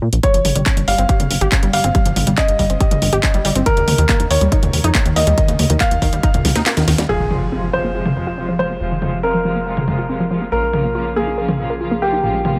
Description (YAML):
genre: uplifting trance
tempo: 140 BPM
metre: 4/4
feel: straight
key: F minor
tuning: A4 = 440 Hz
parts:
  - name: plucky analog bass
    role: bass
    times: 0.0-12.6 s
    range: F1 to Bb2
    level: -23 LUFS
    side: equal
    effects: sidechain pumping
  - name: house drum kit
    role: drums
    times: 0.1-12.5 s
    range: handclaps, hi-hat, snare drum, toms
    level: -23 LUFS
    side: equal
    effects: sidechain pumping on hats, low-pass filter on hats, sidechain pumping on toms, low-pass filter on toms, low-pass filter on snare, low-pass filter on room
  - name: warm baby grand piano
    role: second line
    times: 0.2-12.6 s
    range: G4 to F5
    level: -23 LUFS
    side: equal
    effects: delay
  - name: unison pluck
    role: arpeggios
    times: 0.2-12.6 s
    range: Eb2 to Bb4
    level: -24 LUFS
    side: equal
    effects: sidechain pumping, delay
  - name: electronic kick drum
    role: drums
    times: 0.2-6.3 s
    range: none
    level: -19 LUFS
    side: equal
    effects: none
  - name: rich studio string section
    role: sustained chords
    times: 7.1-12.6 s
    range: C3 to F4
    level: -26 LUFS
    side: equal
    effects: sidechain pumping, low-pass filter
  - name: impact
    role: sound effects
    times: 7.1-8.8 s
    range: none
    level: -30 LUFS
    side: equal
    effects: none
room: light reverb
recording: none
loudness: -17 LUFS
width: mono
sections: 0.0-7.1 A section; 7.1-12.6 B section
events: drum fill 6.4-7.1; kick drops out 6.7-7.1; impact 7.1-8.8; filter sweep on synth arpeggio sound 7.1-12.6; filter sweep on string section 7.1-12.6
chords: 0.2 Dbadd9(#11)/G; 3.7 Eb5; 7.1 Fm; 10.5 Bbm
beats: | 0.23 0.66 1.09 1.52 | 1.95 2.38 2.81 3.23 | 3.66 4.09 4.52 4.95 | 5.38 5.80 6.23 6.66 | 7.09 7.52 7.95 8.38 | 8.80 9.23 9.66 10.09 | 10.52 10.95 11.38 11.80 | 12.23